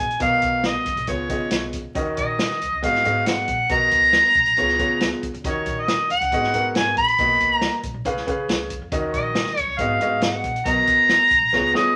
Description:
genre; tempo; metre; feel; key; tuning
uptempo 1960s-style soul; 138 BPM; 4/4; straight; unclear; A4 = 442 Hz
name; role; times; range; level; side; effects
mellow harmonica; melody; 0.0-12.0 s; Db5 to Cb6; -20 LUFS; equal; none
upright bass; bass; 0.0-11.9 s; Ab1 to Db3; -36 LUFS; equal; none
vintage drum kit; drums; 0.1-11.8 s; hi-hat, kick drum, snare drum; -29 LUFS; equal; none
clear grand piano; accompaniment; 0.2-12.0 s; Ab2 to F5; -29 LUFS; equal; none
room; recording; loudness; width
moderate studio reverb, RT60 0.7 s; vinyl crackle; -20 LUFS; mono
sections
0.0-12.0 A section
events
drum fill 11.5-12.0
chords
0.2 Bmaj7; 1.1 Db7; 2.0 Ebm7; 2.8 Abm7; 3.7 Bmaj7; 4.6 Db7; 5.4 Ebm7; 6.3 Abm7; 7.2 Bmaj7; 8.1 Db7; 8.9 Ebm7; 9.8 Abm7; 10.7 Bmaj7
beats
| 0.21 0.65 1.09 1.52 | 1.96 2.40 2.83 3.27 | 3.70 4.14 4.58 5.01 | 5.45 5.88 6.32 6.75 | 7.19 7.62 8.06 8.49 | 8.93 9.36 9.80 10.23 | 10.66 11.10 11.53

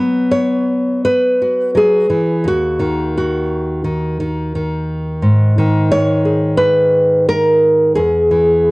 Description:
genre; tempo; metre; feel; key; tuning
folk, solo fingerstyle acoustic guitar; 86 BPM; 4/4; rubato; G# minor; A4 = 444 Hz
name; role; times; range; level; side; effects
nylon-string guitar; solo; 0.0-8.7 s; D#2 to C#5; -12 LUFS; equal; cassette tape
room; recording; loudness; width
moderate studio reverb, RT60 0.5 s; home recording on cassette; -12 LUFS; side -23 dB against mid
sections
0.0-8.7 A section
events
none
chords
0.0 F#sus4; 2.5 N.C.; 5.2 G#m; 8.0 E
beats
0.33 1.04 1.75 | 2.45 3.15 3.85 4.54 | 5.23 5.91 6.59 7.28 | 7.97 8.67

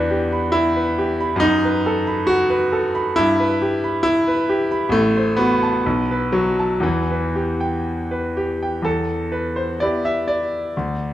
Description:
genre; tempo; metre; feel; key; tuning
classical, romantic character piece for solo piano; 58-70 BPM; 2/4; rubato; E minor; A4 = 440 Hz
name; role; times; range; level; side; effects
bright concert grand piano; solo; 0.0-11.1 s; A1 to B5; -17 LUFS; equal; none
room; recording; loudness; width
wet recital hall reverb, RT60 1.5 s; dark, warm production; -17 LUFS; side -13 dB against mid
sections
0.0-8.9 A section; 8.9-11.1 A section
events
none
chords
0.0 Em; 1.4 B7/F#; 3.2 Em/G; 4.9 F#dim/A; 5.8 B5; 6.8 Em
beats
0.54 | 1.42 2.29 | 3.17 4.05 | 4.93 5.85 | 6.83 7.85 | 8.86 9.81 | 10.74

